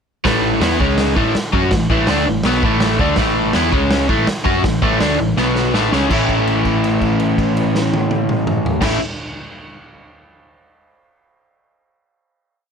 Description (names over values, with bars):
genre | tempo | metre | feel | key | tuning
garage rock duo or trio | 164 BPM | 4/4 | straight | A major | A4 = 440 Hz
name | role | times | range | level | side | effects
overdriven electric guitar | riff | 0.2-9.0 s | A2 to F#4 | -15 LUFS | equal | none
raw garage drum kit | drums | 0.2-8.9 s | crash cymbal, hi-hat, kick drum, snare drum, toms | -20 LUFS | equal | none
hollow-body short-scale picked electric bass | bass | 0.3-9.0 s | A1 to F#2 | -23 LUFS | equal | overdrive
room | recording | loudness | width
light reverb | none | -14 LUFS | side -6 dB against mid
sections
0.2-6.1 riff; 6.1-9.0 final chord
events
drum fill 5.4-6.1; held note 6.1-8.8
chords
0.2 A5; 0.8 C#5; 1.2 A5; 3.7 C#5; 4.1 A; 5.4 B5; 5.7 A